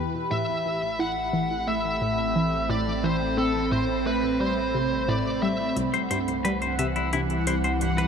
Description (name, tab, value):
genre	ambient, sequencer-driven space music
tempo	88 BPM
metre	4/4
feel	straight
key	unclear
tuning	A4 = 440 Hz
part	evolving wavetable pad	sustained chords	0.0-8.1 s	A2 to B5	-27 LUFS	equal	chorus, built-in reverb, shimmer reverb
part	analog pluck	riff	0.0-8.0 s	C2 to E4	-29 LUFS	equal	chorus, shimmer reverb, ping-pong delay
part	round analog bass	bass	0.0-8.1 s	A1 to E2	-34 LUFS	equal	none
part	smooth overdriven lead guitar	melody	0.3-5.7 s	A4 to F#5	-29 LUFS	equal	shimmer reverb, ping-pong delay
part	electronic hi-hat and bongos	percussion	5.8-8.1 s	none	-37 LUFS	left 2 dB	overdrive, ping-pong delay
part	bubbling stepped-filter texture	texture	5.8-8.1 s	F#5	-34 LUFS	right 5 dB	chorus, built-in reverb, shimmer reverb
part	semi-hollow electric guitar	arpeggios	5.9-8.1 s	E4 to E5	-28 LUFS	moving between left 9 dB and left 2 dB	auto-pan, shimmer reverb, ping-pong delay
room	wet plate reverb, RT60 2.9 s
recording	none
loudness	-23 LUFS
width	side -6 dB against mid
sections	0.0-8.1 A section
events	fade-in on analog synth bass 0.0-8.1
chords	0.3 Amadd9; 5.8 Cmaj7